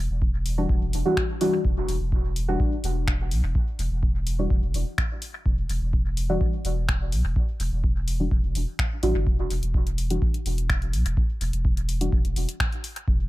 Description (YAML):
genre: dub techno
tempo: 126 BPM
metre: 4/4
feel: straight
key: E minor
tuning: A4 = 442 Hz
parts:
  - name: pure sine sub bass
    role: bass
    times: 0.0-13.3 s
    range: E1 to B1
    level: -26 LUFS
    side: equal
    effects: sidechain pumping
  - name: electronic kick drum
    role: drums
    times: 0.2-13.2 s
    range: none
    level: -24 LUFS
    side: equal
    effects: none
  - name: deep house drum kit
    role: drums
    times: 0.5-13.1 s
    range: finger snaps, hi-hat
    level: -32 LUFS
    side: left 1 dB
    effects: dub echo
  - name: deep mellow chord stab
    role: stabs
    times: 0.6-12.3 s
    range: E3 to F#4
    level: -28 LUFS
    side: equal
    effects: chorus, phaser, dub echo
room: little or no reverb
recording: echo-heavy mix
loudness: -22 LUFS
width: side -18 dB against mid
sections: 0.0-13.3 A section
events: none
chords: 0.0 Em9